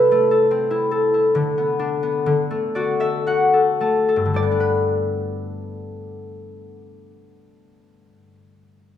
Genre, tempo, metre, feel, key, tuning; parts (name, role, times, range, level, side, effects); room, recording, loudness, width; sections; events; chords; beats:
children's music, lullaby; 51-76 BPM; 3/4; rubato; G major; A4 = 440 Hz
concert harp; melody; 0.0-7.9 s; B4 to E5; -21 LUFS; right 3 dB
concert harp; accompaniment; 0.0-8.2 s; G2 to A5; -18 LUFS; left 3 dB
moderate recital hall reverb, RT60 1.3 s; recorded in a church or concert hall; -17 LUFS; side -10 dB against mid
0.0-4.4 A section; 4.4-7.9 B section
slowing down 0.0-4.4; harp fill 2.2-4.4
0.0 Amadd9/C; 1.3 Bm/D; 2.2 D; 4.4 G
0.51 | 1.34 2.24 3.24 | 4.36 5.54 6.70